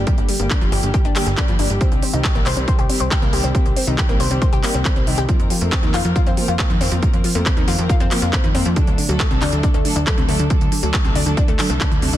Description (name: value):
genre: uplifting trance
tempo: 138 BPM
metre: 4/4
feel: straight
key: unclear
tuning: A4 = 439 Hz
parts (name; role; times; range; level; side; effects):
- plucky analog bass; bass; 0.0-12.2 s; F1 to F2; -22 LUFS; equal; sidechain pumping
- dark studio string section; sustained chords; 0.1-12.2 s; D3 to Bb4; -26 LUFS; right 1 dB; sidechain pumping
- analog pluck; arpeggios; 0.1-12.2 s; C3 to C5; -23 LUFS; left 3 dB; chorus, sidechain pumping, digital delay
- electronic kick drum; drums; 0.1-11.9 s; none; -18 LUFS; equal; none
- techno drum kit; drums; 0.1-12.2 s; handclaps, hi-hat; -24 LUFS; right 1 dB; none
room: digital ambience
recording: dense, heavily limited modern master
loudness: -15 LUFS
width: side -13 dB against mid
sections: 0.0-12.2 A section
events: none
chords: 0.0 Gm; 1.8 Cm; 5.3 Fsus4; 8.8 D